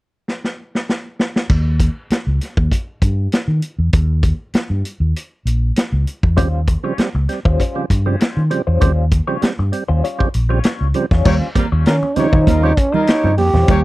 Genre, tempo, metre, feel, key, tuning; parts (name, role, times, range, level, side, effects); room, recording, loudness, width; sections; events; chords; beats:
funk; 98 BPM; 4/4; straight; Eb mixolydian; A4 = 440 Hz
vintage drum kit; drums; 0.3-13.8 s; crash cymbal, hi-hat, kick drum, snare drum; -17 LUFS; equal
fingered electric bass; bass; 1.5-13.8 s; Bb1 to Eb3; -16 LUFS; equal
semi-hollow electric guitar; accompaniment; 6.4-13.8 s; G3 to Db5; -24 LUFS; left 4 dB; wah, tremolo
percussive tonewheel organ; stabs; 6.4-13.4 s; Db3 to C4; -20 LUFS; right 5 dB; chorus vibrato, slow rotary speaker
clear horn section; second line; 11.3-13.8 s; G3 to Db5; -23 LUFS; left 4 dB
mellow electric guitar; riff; 11.3-13.8 s; G3 to Db4; -21 LUFS; right 7 dB
congas; percussion; 11.3-13.8 s; -23 LUFS; right 4 dB
growling trombone; melody; 11.9-13.8 s; Db4 to G4; -17 LUFS; right 1 dB
little or no reverb; dry, close 1970s-style studio recording; -14 LUFS; side -18 dB against mid
0.0-1.5 A section; 1.5-11.3 B section; 11.3-13.8 C section
drum fill 0.3-1.5
0.0 N.C.; 1.5 Eb13
0.28 0.89 | 1.50 2.11 2.72 3.33 | 3.94 4.55 5.16 5.77 | 6.38 6.99 7.60 8.21 | 8.82 9.43 10.04 10.64 | 11.25 11.86 12.47 13.08 | 13.69